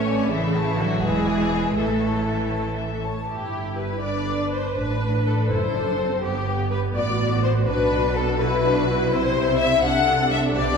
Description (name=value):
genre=quick classical-period movement for string orchestra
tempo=82 BPM (dotted quarters)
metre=6/8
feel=straight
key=A major, G major from 3.3 s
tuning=A4 = 440 Hz
part: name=rich chamber violin section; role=melody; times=0.0-10.8 s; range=E4 to F#5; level=-27 LUFS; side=left 5 dB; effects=none
part: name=rich chamber violin section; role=second line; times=0.0-10.8 s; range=G4 to A5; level=-26 LUFS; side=left 3 dB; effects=none
part: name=rich symphonic viola section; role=accompaniment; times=0.0-10.8 s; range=C#3 to B4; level=-26 LUFS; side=right 1 dB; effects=none
part: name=clear symphonic double bass section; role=bass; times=0.0-10.8 s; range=E1 to C2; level=-28 LUFS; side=right 2 dB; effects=none
part: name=rich studio cello section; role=bass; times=0.0-10.8 s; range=F#2 to C#4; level=-26 LUFS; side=right 1 dB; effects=none
room=wet scoring stage reverb, RT60 1.6 s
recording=heard from further back in the room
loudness=-20 LUFS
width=side -6 dB against mid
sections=0.0-3.3 A section; 3.3-10.8 B section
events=none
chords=0.3 A; 1.0 E7; 1.8 A; 3.3 G; 4.8 D7/A; 6.2 G; 7.7 Bmadd11; 9.1 C; 9.8 D7/C